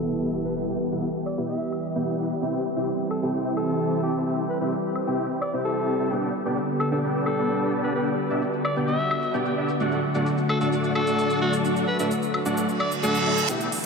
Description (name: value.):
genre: EDM, festival progressive house.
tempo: 130 BPM.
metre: 4/4.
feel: straight.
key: unclear.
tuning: A4 = 435 Hz.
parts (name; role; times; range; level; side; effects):
raspy alto saxophone; melody; 0.0-13.5 s; F#4 to E5; -29 LUFS; equal; ping-pong delay.
lush unison pad; sustained chords; 0.0-13.9 s; D3 to G4; -27 LUFS; equal; chorus, phaser.
dense compressed supersaw; riff; 0.0-13.7 s; A3 to A5; -26 LUFS; equal; cassette tape, low-pass filter, ping-pong delay.
impact, reverse cymbal and riser; sound effects; 0.0-0.6, 12.8-13.9 s; none; -30 LUFS; right 4 dB; none.
big-room dance drum kit; drums; 0.1-13.8 s; hi-hat, shaker, snare drum, woodblock; -35 LUFS; left 2 dB; high-pass filter on hats, studio reverb, high-pass filter on cymbals, high-pass filter on perc, high-pass filter on snare.
room: wet cathedral reverb, RT60 4.7 s.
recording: dreamy mix soaked in reverb, low-pass filter.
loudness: -22 LUFS.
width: side -4 dB against mid.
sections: 0.0-13.5 A section.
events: impact 0.0-0.6; filter sweep 0.0-13.5; reverse cymbal 12.8-13.5; drum fill 13.5-13.9; riser 13.5-13.9.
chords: 0.0 Em; 2.4 C; 6.1 G; 9.8 D.